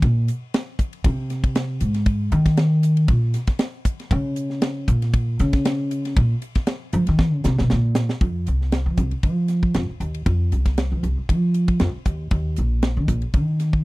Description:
electric jazz fusion; 117 BPM; 4/4; swing 54% on 16ths; A4 = 440 Hz
upright bass; bass; 0.0-13.8 s; Bb1 to F3; -20 LUFS; equal
crisp fusion drum kit; drums; 0.0-13.8 s; hi-hat, kick drum, ride cymbal, snare drum; -22 LUFS; equal
little or no reverb; dry, close 1970s-style studio recording; -19 LUFS; side -21 dB against mid
0.0-8.2 A section; 8.2-13.8 B section
upright bass solo 0.0-8.2; drum fill 7.2-8.2
| 0.02 0.54 1.05 1.56 | 2.07 2.58 3.09 3.61 | 4.12 4.63 5.14 5.65 | 6.17 6.68 7.19 7.70 | 8.21 8.73 9.24 9.75 | 10.27 10.78 11.29 11.80 | 12.32 12.83 13.34

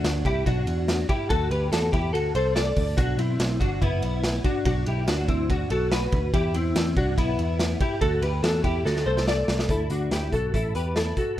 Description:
jangly indie pop; 143 BPM; 4/4; straight; D mixolydian; A4 = 440 Hz
direct-recorded clean electric guitar; arpeggios; 0.0-11.4 s; B3 to D5; -26 LUFS; left 1 dB; ensemble chorus
vintage muted picked electric bass; bass; 0.0-11.1 s; F#1 to E2; -26 LUFS; equal
raw garage drum kit; drums; 0.0-11.3 s; hi-hat, kick drum, ride cymbal, snare drum; -27 LUFS; equal
small room ambience; rough home demo mix; -22 LUFS; side -12 dB against mid
0.0-9.7 A section; 9.7-11.4 B section
drum fill 8.9-9.7
0.0 D; 3.0 Bm; 6.3 Em; 8.0 D; 9.7 Dsus2
0.04 0.46 0.88 | 1.30 1.72 2.14 2.56 | 2.98 3.40 3.82 4.24 | 4.66 5.08 5.50 5.92 | 6.34 6.76 7.18 7.59 | 8.02 8.44 8.86 9.28 | 9.70 10.12 10.54 10.96 | 11.38

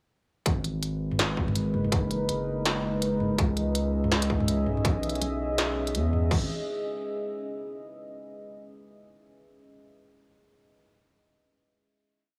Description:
half-time drum and bass; 164 BPM; 4/4; swing 58% on 16ths, half-time; G# minor; A4 = 441 Hz
deep dark ambient pad; sustained chords; 1.0-6.5 s; G#3 to E5; -34 LUFS; equal; chorus, built-in reverb, vintage 12-bit sampler grit, sidechain pumping
saturated sub bass; bass; 0.5-6.5 s; F#1 to E2; -31 LUFS; equal
electronic kick drum; drums; 0.5-6.4 s; -30 LUFS; equal; distortion
industrial drum kit; drums; 0.5-6.4 s; crash cymbal, hi-hat, snare drum, toms; -32 LUFS; equal
light reverb; small room ambience; -28 LUFS; mono
0.5-6.3 drop; 6.3-7.8 final chord
drop 0.5-6.3
0.5 G#m; 3.4 C#m; 6.3 G#m
| 0.46 0.82 1.19 1.55 | 1.92 2.29 2.65 3.02 | 3.38 3.75 4.12 4.48 | 4.85 5.21 5.58 5.95 | 6.31

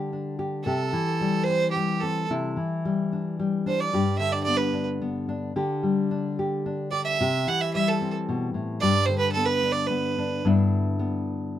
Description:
acoustic folk duo or small band; 110 BPM; 3/4; straight; G major; A4 = 440 Hz
nylon-string guitar; accompaniment; 0.0-11.6 s; G2 to G4; -25 LUFS; left 2 dB
clear fiddle; second line; 0.6-10.4 s; G4 to F#5; -26 LUFS; right 5 dB
little or no reverb; dry, close 1970s-style studio recording; -23 LUFS; side -11 dB against mid
0.0-10.4 A section; 10.4-11.6 B section
fiddle solo 0.0-10.4
0.0 Dsus4; 0.6 Am7/C; 2.3 Cadd9; 3.9 G; 5.5 Dsus4; 7.2 Am7/C; 8.8 G; 10.4 G6
0.10 | 0.65 1.19 1.74 | 2.28 2.82 3.37 | 3.91 4.46 5.00 | 5.55 6.09 6.63 | 7.18 7.72 8.27 | 8.81 9.35 9.90 | 10.44 10.98 11.53

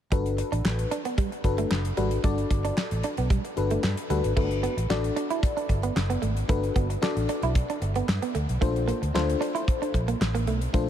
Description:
early-eighties boogie funk; 113 BPM; 4/4; straight; G major; A4 = 440 Hz
FM electric piano with soft pad layer; accompaniment; 0.1-10.9 s; D4 to D5; -30 LUFS; left 4 dB; chorus
direct-recorded clean electric guitar; riff; 0.1-10.9 s; G3 to E4; -32 LUFS; right 7 dB; lush chorus
vintage muted fingered electric bass; bass; 0.1-10.9 s; F#1 to G2; -28 LUFS; equal
damped 70s drum kit; drums; 0.1-10.9 s; crash cymbal, handclaps, hi-hat, kick drum, snare drum; -29 LUFS; equal
light reverb, studio reverb; -24 LUFS; side -10 dB against mid
0.1-4.4 A section; 4.4-10.9 B section
0.1 Gmaj9; 8.6 Bbmaj9
| 0.12 0.65 1.18 1.71 | 2.24 2.77 3.30 3.83 | 4.37 4.90 5.43 5.96 | 6.49 7.02 7.55 8.08 | 8.61 9.14 9.68 10.21 | 10.74

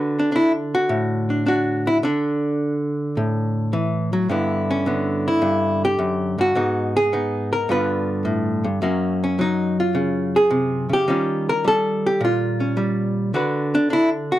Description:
solo jazz; 106 BPM; 4/4; swing 69% on 8ths; D major; A4 = 440 Hz
archtop guitar, miked and amplified; solo; 0.0-14.4 s; F#2 to B4; -18 LUFS; equal
light reverb; dry, close 1970s-style studio recording; -18 LUFS; side -14 dB against mid
0.0-14.4 A section
0.0 D6; 2.0 Dsus2; 4.3 G6; 6.6 G#m; 7.7 G7; 8.8 F#maj7; 11.1 Eb9; 13.3 D69
0.32 0.89 1.46 | 2.02 2.59 3.16 3.73 | 4.29 4.86 5.42 5.99 | 6.56 7.12 7.69 8.26 | 8.82 9.39 9.95 10.52 | 11.08 11.65 12.22 12.78 | 13.35 13.91

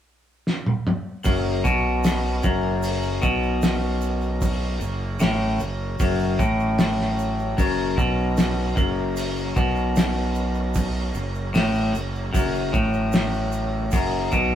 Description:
psychedelic rock; 76 BPM; 4/4; straight; F# major; A4 = 440 Hz
cloth-damped thuddy drum kit; drums; 0.5-14.5 s; hi-hat, kick drum, snare drum, toms; -25 LUFS; equal
twangy electric guitar; riff; 1.2-14.6 s; F#2 to B2; -24 LUFS; left 2 dB
egg shaker; percussion; 1.2-14.5 s; -42 LUFS; right 9 dB
tonewheel organ; sustained chords; 1.3-14.6 s; F#3 to A#4; -34 LUFS; right 3 dB; slow rotary speaker, overdrive
fuzz fingered electric bass; bass; 1.3-14.6 s; F#1 to B1; -27 LUFS; right 1 dB; overdrive
light reverb; band playing live in one room, faint mains hum; -20 LUFS; side -10 dB against mid
0.0-1.2 A section; 1.2-14.6 B section
drum fill 0.5-1.2
0.0 N.C.; 1.2 F#
0.46 | 1.25 2.04 2.83 3.62 | 4.41 5.20 5.99 6.79 | 7.58 8.37 9.16 9.96 | 10.75 11.54 12.33 13.13 | 13.92

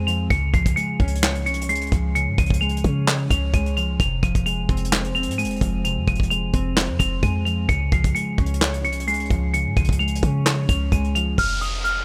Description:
hip hop, trap; 130 BPM; 4/4; half-time; A4 = 440 Hz
small celesta; melody; 0.0-12.0 s; Eb6 to F7; -28 LUFS; equal; low-pass filter, digital delay
mellow electric guitar; accompaniment; 0.0-11.4 s; C3 to Db5; -29 LUFS; equal; subtle chorus, low-pass filter
clean 808-style bass; bass; 0.0-12.0 s; F1 to Db3; -27 LUFS; equal
soft brush drum kit; drums; 0.1-12.0 s; handclaps, hi-hat, kick drum, snare drum; -25 LUFS; equal
downlifter; sound effects; 11.4-12.0 s; -30 LUFS; equal
small room ambience; -21 LUFS; mono
0.0-11.4 A section
0.3 Db; 4.0 Fm; 7.7 Db; 11.4 Ebsus2/F
| 0.30 0.77 1.23 1.69 | 2.15 2.61 3.07 3.54 | 4.00 4.46 4.92 5.38 | 5.84 6.30 6.77 7.23 | 7.69 8.15 8.61 9.07 | 9.54 10.00 10.46 10.92 | 11.38 11.84

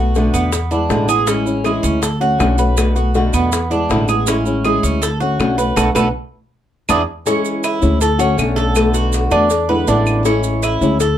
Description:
latin, Cuban son and guajira; 160 BPM; 4/4; straight; A major; A4 = 439 Hz
flamenco guitar; accompaniment; 0.0-11.0 s; B2 to F#4; -18 LUFS; left 2 dB
Cuban tres; arpeggios; 0.0-11.2 s; B3 to B4; -19 LUFS; right 4 dB
upright bass; bass; 0.0-11.2 s; A1 to E2; -18 LUFS; equal
bongos and cowbell; percussion; 0.2-11.2 s; -23 LUFS; left 6 dB
maracas; percussion; 0.2-11.2 s; -27 LUFS; right 8 dB
claves; percussion; 0.3-10.8 s; -25 LUFS; equal
light reverb; -14 LUFS; side -10 dB against mid
0.0-7.3 A section; 7.3-11.2 B section
band accent 5.8-7.3; drum fill 6.3-7.3
0.0 Bm7; 0.5 E7; 1.3 Amaj7; 2.0 Dmaj7; 2.8 Bm7; 3.5 E7; 4.3 Amaj7; 5.0 Dmaj7; 5.8 Bm7; 6.5 E7; 7.3 C#m; 8.0 Dmaj7; 8.8 Bm7; 9.5 E7; 10.3 Amaj7
0.15 0.53 0.90 | 1.28 1.65 2.02 2.40 | 2.77 3.15 3.52 3.90 | 4.27 4.64 5.02 5.39 | 5.77 6.14 6.52 6.89 | 7.26 7.64 8.01 8.38 | 8.76 9.13 9.51 9.88 | 10.25 10.62 11.00

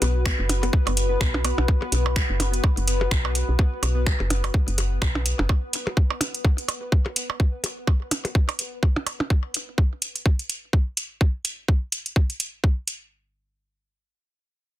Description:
minimal techno; 126 BPM; 4/4; swing 57% on 16ths; A4 = 440 Hz
mallet-like synth pluck; riff; 0.0-1.5 s; B3; -34 LUFS; left 2 dB; chorus, sidechain pumping, digital delay
woody FM bass; bass; 0.0-5.5 s; F#1 to B1; -24 LUFS; equal; sidechain pumping
booming analog drum machine; drums; 0.0-13.0 s; finger snaps, hi-hat; -27 LUFS; equal; soft clipping on snare
percussion blips; percussion; 0.0-9.3 s; -28 LUFS; right 2 dB; ping-pong delay
deep dark ambient pad; texture; 0.0-5.5 s; F#4 to B5; -32 LUFS; left 2 dB; chorus, built-in reverb, sidechain pumping
pulsing gated texture; texture; 0.0-9.3 s; B3 to B4; -35 LUFS; left 1 dB; chorus, built-in reverb, sidechain pumping
electronic kick drum; drums; 0.3-12.7 s; -20 LUFS; equal; overdrive
little or no reverb; dense, heavily limited modern master; -21 LUFS; side -14 dB against mid
0.0-13.1 A section
filter sweep on synth arpeggio sound 0.0-1.7
0.0 B5
0.26 0.73 1.21 | 1.68 2.16 2.64 3.11 | 3.59 4.07 4.54 5.02 | 5.49 5.97 6.45 6.92 | 7.40 7.88 8.35 8.83 | 9.30 9.78 10.26 10.73 | 11.21 11.68 12.16 12.64

